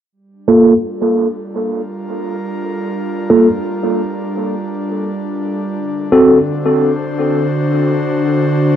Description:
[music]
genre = ambient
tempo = 85 BPM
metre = 4/4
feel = swing 59% on 16ths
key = G minor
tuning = A4 = 440 Hz
[part]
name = airy breathy pad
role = sustained chords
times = 0.7-8.8 s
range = D3 to C5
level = -18 LUFS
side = equal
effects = chorus
[part]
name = tine electric piano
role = stabs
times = 0.5-6.4 s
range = Bb3 to A4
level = -13 LUFS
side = right 1 dB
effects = medium stereo tremolo, low-pass filter, dub echo
[sound]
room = moderate spring reverb, RT60 2.7 s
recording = none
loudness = -13 LUFS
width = side -10 dB against mid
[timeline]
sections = 0.1-8.8 A section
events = fade-in on analog synth pad 0.1-8.8; filter sweep on tine electric piano 0.1-8.8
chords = 0.1 Gm7; 5.8 D7

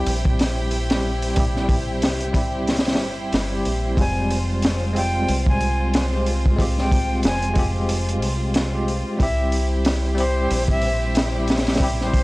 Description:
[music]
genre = trip hop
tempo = 92 BPM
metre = 4/4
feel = swing 56% on 16ths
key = F harmonic minor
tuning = A4 = 440 Hz
[part]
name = bell-like tine electric piano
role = accompaniment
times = 0.0-12.2 s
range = G3 to G4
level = -26 LUFS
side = equal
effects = medium stereo tremolo, tape echo
[part]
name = warm studio violin section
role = sustained chords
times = 0.0-12.2 s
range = C4 to G5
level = -29 LUFS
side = equal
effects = none
[part]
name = deep dub fingered electric bass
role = bass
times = 0.0-12.2 s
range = F1 to C2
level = -24 LUFS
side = equal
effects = tube saturation
[part]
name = crunchy breakbeat drum kit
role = drums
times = 0.1-12.2 s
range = hi-hat, kick drum, snare drum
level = -22 LUFS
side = equal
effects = vintage 12-bit sampler grit
[part]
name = breathy bright jazz flute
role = melody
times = 4.0-12.2 s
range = C5 to Ab5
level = -27 LUFS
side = equal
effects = tape echo
[sound]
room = small room ambience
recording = dry, gritty hardware recording, vinyl crackle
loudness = -18 LUFS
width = side -21 dB against mid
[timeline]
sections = 0.0-12.2 A section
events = none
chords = 0.0 C; 4.0 Fmadd9; 9.2 C

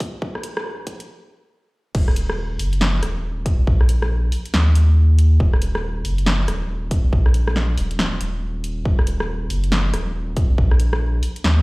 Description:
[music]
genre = deep dubstep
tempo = 139 BPM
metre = 4/4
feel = swing 62% on 16ths, half-time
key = Eb minor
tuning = A4 = 440 Hz
[part]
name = soft dub sub bass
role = bass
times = 0.0-11.6 s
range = Eb1 to Eb2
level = -18 LUFS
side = equal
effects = none
[part]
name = deep house drum kit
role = drums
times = 0.0-11.6 s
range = crash cymbal, hi-hat, rim click, snare drum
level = -25 LUFS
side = equal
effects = none
[part]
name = electronic kick drum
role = drums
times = 0.0-10.7 s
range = none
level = -18 LUFS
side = equal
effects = none
[sound]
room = light reverb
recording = played on a big sound system in a bare room, stone room reverb, high-pass filter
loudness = -17 LUFS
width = side -25 dB against mid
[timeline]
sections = 0.0-1.9 A section; 1.9-11.6 B section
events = build-up 0.0-1.9; stop 1.1-1.9; drop 1.9-11.6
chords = none

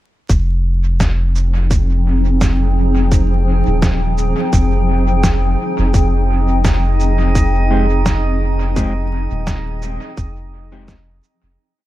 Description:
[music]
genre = ambient dub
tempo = 85 BPM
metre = 4/4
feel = swing 54% on 16ths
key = F minor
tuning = A4 = 442 Hz
[part]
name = granular cloud pad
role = sustained chords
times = 1.4-11.6 s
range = F3 to G5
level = -20 LUFS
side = equal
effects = built-in reverb
[part]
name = soft dub sub bass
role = bass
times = 0.3-11.6 s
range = Eb1 to F1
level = -16 LUFS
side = equal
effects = none
[part]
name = electronic kick drum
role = drums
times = 0.3-11.0 s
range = none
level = -16 LUFS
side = equal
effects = none
[part]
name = electronic shaker and snare drum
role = drums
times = 0.3-11.4 s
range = none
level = -24 LUFS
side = equal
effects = overdrive, dub echo
[part]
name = drifting glass-harmonics texture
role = texture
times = 6.5-11.6 s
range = Eb4 to Eb5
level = -26 LUFS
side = right 4 dB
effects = chorus, built-in reverb
[part]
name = mellow electric guitar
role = stabs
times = 7.7-10.9 s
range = Ab3 to G4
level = -22 LUFS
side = left 1 dB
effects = wide subtle chorus, dub echo
[sound]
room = digital ambience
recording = echo-heavy mix, vinyl crackle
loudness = -13 LUFS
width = side -15 dB against mid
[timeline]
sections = 0.3-11.6 groove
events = fade-out 7.8-11.6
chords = 0.3 Fm7

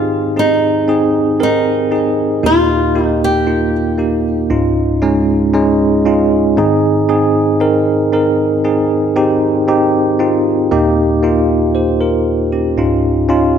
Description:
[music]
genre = pop ballad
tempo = 58 BPM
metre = 4/4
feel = straight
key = Ab major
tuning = A4 = 437 Hz
[part]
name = flamenco guitar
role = melody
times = 0.0-6.0 s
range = Eb4 to G4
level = -16 LUFS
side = equal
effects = none
[part]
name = bell-like tine electric piano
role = accompaniment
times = 0.0-13.6 s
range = Db2 to C5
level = -12 LUFS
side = right 1 dB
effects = medium stereo tremolo
[sound]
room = moderate lush hall reverb, RT60 1.8 s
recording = none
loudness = -11 LUFS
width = side -8 dB against mid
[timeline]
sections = 0.0-13.6 A section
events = none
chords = 0.0 Ab; 2.4 Eb; 4.5 Dbadd9; 6.6 Ab; 10.7 Eb; 12.8 Dbadd9

